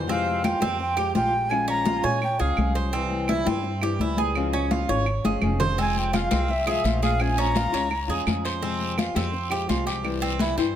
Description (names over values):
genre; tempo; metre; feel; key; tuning
latin, Cuban son and guajira; 169 BPM; 4/4; straight; F harmonic minor; A4 = 441 Hz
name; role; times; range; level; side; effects
flamenco guitar; accompaniment; 0.0-10.7 s; C3 to G4; -29 LUFS; left 6 dB; none
Cuban tres; arpeggios; 0.0-10.8 s; C4 to Db5; -28 LUFS; right 5 dB; none
upright bass; bass; 0.0-10.8 s; F1 to Bb2; -28 LUFS; right 1 dB; none
breathy reedy jazz flute; melody; 0.1-2.8, 5.8-8.1 s; E5 to Bb5; -26 LUFS; equal; none
congas; percussion; 0.1-10.6 s; none; -28 LUFS; left 3 dB; none
claves; percussion; 0.4-10.2 s; none; -34 LUFS; right 6 dB; none
guiro; percussion; 5.8-10.8 s; none; -36 LUFS; left 5 dB; none
room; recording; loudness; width
light reverb; none; -22 LUFS; side -10 dB against mid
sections
0.0-10.8 A section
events
drum fill 5.2-5.8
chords
0.1 Fmadd9; 1.5 Bbm7; 2.9 C; 4.4 Db; 5.8 Fm; 7.2 Bbm7; 8.6 Fmadd9; 10.0 C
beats
| 0.08 0.44 0.80 1.15 | 1.51 1.86 2.22 2.58 | 2.93 3.29 3.64 4.00 | 4.36 4.71 5.07 5.42 | 5.78 6.14 6.49 6.85 | 7.20 7.56 7.91 8.27 | 8.62 8.98 9.34 9.69 | 10.05 10.40